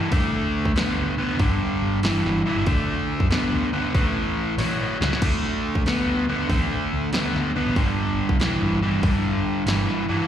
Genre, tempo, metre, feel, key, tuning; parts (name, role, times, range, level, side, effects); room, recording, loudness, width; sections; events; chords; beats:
blues rock power trio and southern rock; 94 BPM; 4/4; swing 67% on 8ths; D major; A4 = 440 Hz
overdriven electric guitar; riff; 0.0-10.3 s; G2 to B3; -22 LUFS; equal
hollow-body short-scale picked electric bass; bass; 0.1-10.2 s; G1 to G2; -26 LUFS; equal
house drum kit; drums; 0.1-10.0 s; crash cymbal, hi-hat, kick drum, snare drum; -24 LUFS; equal
digital ambience; live gig heard through the venue's PA, recital hall reverb; -20 LUFS; side -10 dB against mid
0.0-5.2 A section; 5.2-10.3 A section
drum fill 4.6-5.2
0.1 D5; 1.4 G5; 2.7 D5; 4.0 A5; 5.2 D5; 7.8 G5
| 0.12 0.76 1.40 2.04 | 2.67 3.31 3.95 4.59 | 5.22 5.86 6.50 7.13 | 7.77 8.40 9.04 9.67